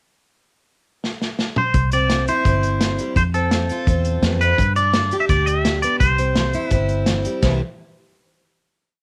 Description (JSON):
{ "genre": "honky-tonk and classic country", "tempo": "169 BPM", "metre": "4/4", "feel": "straight", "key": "C major", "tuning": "A4 = 437 Hz", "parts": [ { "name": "vintage drum kit", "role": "drums", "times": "1.0-7.5 s", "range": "hi-hat, kick drum, ride cymbal, snare drum, toms", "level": "-24 LUFS", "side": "equal", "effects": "cassette tape" }, { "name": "twangy electric guitar", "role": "melody", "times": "1.6-7.0 s", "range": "A4 to E5", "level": "-24 LUFS", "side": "equal", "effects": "cassette tape" }, { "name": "picked steel-string acoustic guitar", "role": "accompaniment", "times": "1.7-7.6 s", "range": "E2 to G4", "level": "-26 LUFS", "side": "equal", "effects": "cassette tape, plate reverb" }, { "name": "vintage muted fingered electric bass", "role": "bass", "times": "1.7-7.6 s", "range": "G1 to G2", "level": "-23 LUFS", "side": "equal", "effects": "none" } ], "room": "light reverb", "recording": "home recording on cassette", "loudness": "-19 LUFS", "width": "mono", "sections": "0.3-1.7 pickup bar; 1.7-7.4 A section; 7.4-8.9 final chord", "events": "drum fill 1.0-1.7", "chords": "0.3 N.C.; 1.7 C; 3.2 F; 4.6 G5; 6.0 C", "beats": "| 0.33 0.68 1.04 1.39 | 1.75 2.10 2.45 2.81 | 3.16 3.52 3.87 4.23 | 4.58 4.94 5.29 5.65 | 6.01 6.36 6.72 7.08 | 7.43" }